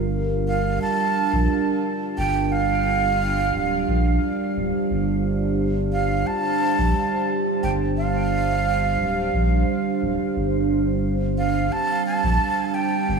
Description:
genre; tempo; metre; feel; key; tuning
ambient dub; 88 BPM; 4/4; straight; G minor; A4 = 440 Hz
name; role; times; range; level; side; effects
deep dark ambient pad; sustained chords; 0.0-13.2 s; G3 to C5; -23 LUFS; right 2 dB; chorus, built-in reverb
soft dub sub bass; bass; 0.0-13.2 s; D1 to Bb1; -24 LUFS; equal; none
breathy mellow silver concert flute; melody; 0.5-13.2 s; F5 to A5; -24 LUFS; right 3 dB; dub echo
room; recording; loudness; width
moderate spring reverb, RT60 2.1 s; studio ambience; -20 LUFS; side -5 dB against mid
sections
0.0-13.2 A section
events
none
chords
0.0 Gm11

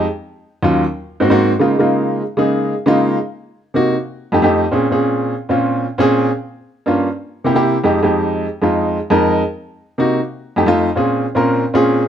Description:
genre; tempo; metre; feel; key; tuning
jazz; 154 BPM; 4/4; straight; F minor; A4 = 440 Hz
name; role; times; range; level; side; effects
warm upright piano; solo; 0.0-12.0 s; Eb2 to Bb4; -14 LUFS; equal; none
room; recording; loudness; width
light reverb; close, detailed microphones; -14 LUFS; side -9 dB against mid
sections
0.0-11.0 A section; 11.0-12.1 B section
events
none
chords
0.0 Ebm7; 0.8 Ab7; 1.6 Db69; 3.2 Cm7b5; 3.9 F7; 4.7 Bbm7; 6.3 Gm7b5; 7.1 C7; 7.8 Fm7; 9.4 Cm7b5; 10.2 F7; 11.0 Bbm9

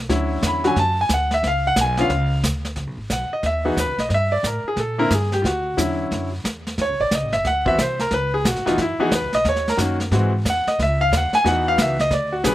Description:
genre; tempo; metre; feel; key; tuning
jazz piano trio; 180 BPM; 4/4; swing 64% on 8ths; C# minor; A4 = 440 Hz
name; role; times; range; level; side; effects
upright bass; bass; 0.0-12.5 s; E1 to Bb2; -24 LUFS; equal; none
clear concert grand piano; melody; 0.1-12.5 s; D3 to B5; -20 LUFS; equal; slapback echo
vintage brush drum kit; drums; 0.1-12.5 s; brushed snare drum, hi-hat, kick drum, snare drum; -25 LUFS; equal; none
room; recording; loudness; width
little or no reverb; recorded outdoors, with no room sound; -18 LUFS; side -14 dB against mid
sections
0.0-2.8 A section; 2.8-12.5 A section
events
grand piano solo 0.0-2.8, 2.8-12.5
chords
0.1 Dmaj9; 1.4 C#7b9; 2.8 C#m11; 4.1 C7 (rootless); 5.4 Dmaj9; 6.8 D#m7b5; 7.4 D9; 8.1 C#m11; 9.4 D#m7; 10.1 G#aug7; 10.8 C#m11

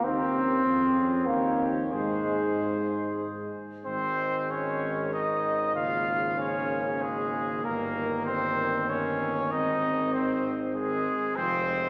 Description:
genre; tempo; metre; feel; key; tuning
classical, brass quintet; 96 BPM; 3/4; straight; Ab major; A4 = 440 Hz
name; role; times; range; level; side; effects
warm trumpet; melody; 0.0-11.9 s; Ab4 to F5; -33 LUFS; equal; none
clear trumpet; second line; 0.0-11.9 s; Ab3 to Ab4; -37 LUFS; equal; none
clear trombone; accompaniment; 0.0-11.9 s; Db3 to C4; -33 LUFS; equal; none
dark French horn; accompaniment; 0.0-11.9 s; Ab3 to Eb4; -37 LUFS; equal; none
warm tuba; bass; 0.0-11.9 s; F1 to Ab2; -38 LUFS; equal; none
room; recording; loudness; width
wet church reverb, RT60 3.5 s; none; -28 LUFS; mono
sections
0.0-3.9 A section; 3.9-11.9 B section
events
none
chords
0.0 Eb; 0.7 Fm; 1.3 Eb7; 1.9 Ab; 5.8 Bbm7/Ab; 7.6 Eb/G; 9.5 Ab; 11.4 Fm

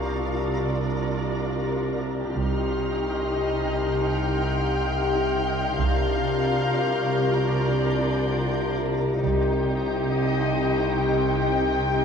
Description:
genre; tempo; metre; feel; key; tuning
cinematic, suspense film score; 70 BPM; 4/4; straight; C minor; A4 = 444 Hz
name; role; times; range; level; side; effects
muted chamber violin section; melody; 0.0-12.0 s; D5 to G5; -31 LUFS; left 4 dB; none
muted chamber violin section; second line; 0.0-12.0 s; D4 to Bb4; -32 LUFS; equal; none
flickering grainy texture; sustained chords; 0.0-12.0 s; Eb4 to Bb5; -33 LUFS; right 2 dB; built-in reverb
concert harp; riff; 0.0-12.0 s; C3; -27 LUFS; left 5 dB; none
muted chamber cello section; bass; 0.0-12.0 s; C3; -29 LUFS; right 5 dB; none
overtone-sweeping drone; drone; 0.0-12.0 s; C2; -30 LUFS; right 1 dB; chorus, built-in reverb
muted studio violin section; texture; 0.0-12.0 s; C6 to G6; -35 LUFS; left 2 dB; none
muted chamber double bass section; bass; 2.4-10.0 s; C2; -28 LUFS; right 3 dB; none
room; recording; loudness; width
light reverb; dark, warm production; -22 LUFS; side -6 dB against mid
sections
0.0-12.0 A section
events
none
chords
0.0 Bb/C; 2.4 Cm; 5.8 Bb/C; 9.2 Cm

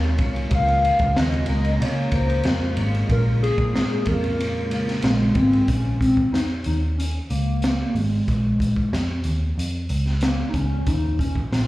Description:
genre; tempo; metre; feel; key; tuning
indie pop, bedroom pop; 93 BPM; 4/4; straight; Bb minor; A4 = 440 Hz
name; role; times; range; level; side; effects
warbly nostalgic lead; melody; 0.0-11.7 s; Ab3 to F5; -24 LUFS; left 1 dB; analog chorus, slapback echo
mellow electric guitar; accompaniment; 0.0-6.2 s; Bb2 to Bb4; -31 LUFS; left 2 dB; ensemble chorus, warbly pitch drift, plate reverb, slapback echo
tine electric piano; accompaniment; 0.0-5.7 s; Db3 to Bb4; -32 LUFS; right 3 dB; medium stereo tremolo, cassette tape, plate reverb, slapback echo
warbly tape-like pad; sustained chords; 0.0-5.7 s; Db3 to F4; -32 LUFS; equal; chorus, built-in reverb
vintage muted picked electric bass; bass; 0.0-11.7 s; Ab1 to Db3; -23 LUFS; equal; none
raw garage drum kit; drums; 0.0-11.7 s; hi-hat, kick drum, ride cymbal, snare drum; -25 LUFS; equal; none
room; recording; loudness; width
light reverb; live gig heard through the venue's PA, club reverb; -19 LUFS; side -17 dB against mid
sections
0.0-5.7 A section; 5.7-11.7 B section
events
none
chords
0.0 Eb9sus4; 0.5 Db6; 3.1 Bbm7; 10.9 Eb5

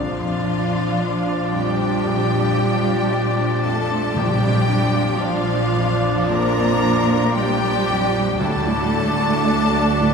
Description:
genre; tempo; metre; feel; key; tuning
cinematic, emotional film score for orchestra; 57 BPM; 4/4; rubato; Bb major; A4 = 440 Hz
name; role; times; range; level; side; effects
rich studio violin section; melody; 0.0-10.1 s; F5 to Bb5; -27 LUFS; left 4 dB; none
concert flute; second line; 0.0-10.1 s; D6; -30 LUFS; left 1 dB; none
mellow clarinet; second line; 0.0-10.1 s; F4 to F#4; -30 LUFS; right 1 dB; none
rich studio violin section; second line; 0.0-10.1 s; F4 to Bb4; -28 LUFS; left 3 dB; none
warm oboe; second line; 0.0-10.1 s; D5; -29 LUFS; right 1 dB; none
felt-muted upright piano; accompaniment; 0.0-10.1 s; Bb1 to D5; -27 LUFS; left 2 dB; none
rich studio viola section; accompaniment; 0.0-10.1 s; F3 to D4; -26 LUFS; right 2 dB; none
mellow French horn section; sustained chords; 0.0-10.1 s; F3 to Bb3; -26 LUFS; right 1 dB; none
concert harp; arpeggios; 0.0-10.1 s; Bb2 to D5; -29 LUFS; left 4 dB; none
rich studio double bass section; bass; 0.0-10.1 s; Bb1 to D2; -25 LUFS; right 1 dB; none
warm studio cello section; bass; 0.0-10.1 s; F3 to Bb3; -25 LUFS; right 3 dB; none
timpani; percussion; 4.2-5.7 s; Bb2; -27 LUFS; left 1 dB; none
room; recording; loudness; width
wet church reverb, RT60 2.5 s; recorded in a church or concert hall; -17 LUFS; side -5 dB against mid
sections
0.0-10.1 A section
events
none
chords
0.0 Gm7/Bb; 4.2 Bb; 8.4 D

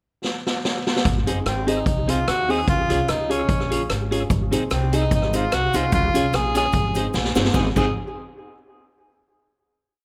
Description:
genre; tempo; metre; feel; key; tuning
ska; 148 BPM; 4/4; swing 55% on 8ths; Ab mixolydian; A4 = 440 Hz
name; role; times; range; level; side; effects
street-band drum kit; drums; 0.2-7.8 s; crash cymbal, hi-hat, kick drum, rim click, snare drum; -26 LUFS; equal; analog delay
upright bass; bass; 1.1-7.9 s; Gb1 to Eb2; -28 LUFS; equal; none
clean electric guitar; accompaniment; 1.3-7.9 s; C4 to Db5; -30 LUFS; equal; none
warm upright piano; stabs; 1.3-7.9 s; C4 to Ab4; -30 LUFS; equal; analog delay
breathy tenor saxophone; melody; 1.5-7.9 s; C4 to Ab4; -26 LUFS; equal; analog delay
cabasa; percussion; 4.3-7.9 s; none; -43 LUFS; equal; none
room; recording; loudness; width
light reverb, small room ambience; none; -21 LUFS; mono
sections
0.0-1.1 pickup bar; 1.1-7.5 A section; 7.5-9.2 final chord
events
drum fill 0.2-1.1, 7.1-7.5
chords
0.0 N.C.; 1.1 Ab; 2.7 Db; 4.3 Ab; 5.9 Db; 6.7 Ab

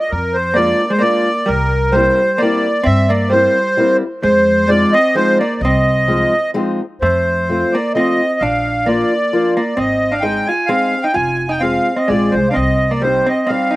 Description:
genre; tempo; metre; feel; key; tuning
musette waltz; 130 BPM; 3/4; swing 54% on 8ths; F dorian; A4 = 440 Hz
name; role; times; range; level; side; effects
accordion; melody; 0.0-13.8 s; Bb4 to Ab5; -15 LUFS; right 1 dB; light tremolo tuning, slapback echo
upright bass; bass; 0.1-13.2 s; F1 to G2; -20 LUFS; equal; none
vintage hollow-body jazz guitar; second line; 0.5-13.8 s; G3 to F4; -19 LUFS; equal; none
fingerpicked old ladder-braced acoustic guitar; accompaniment; 0.6-13.8 s; F3 to Ab4; -19 LUFS; left 2 dB; none
room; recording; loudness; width
little or no reverb; recorded outdoors, with no room sound; -13 LUFS; side -18 dB against mid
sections
0.0-7.0 A section; 7.0-13.8 B section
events
none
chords
0.0 Bb7; 1.5 C7; 4.2 Fm7; 7.0 F; 8.4 Bb; 9.8 Ab; 11.2 Fm; 12.6 Cm

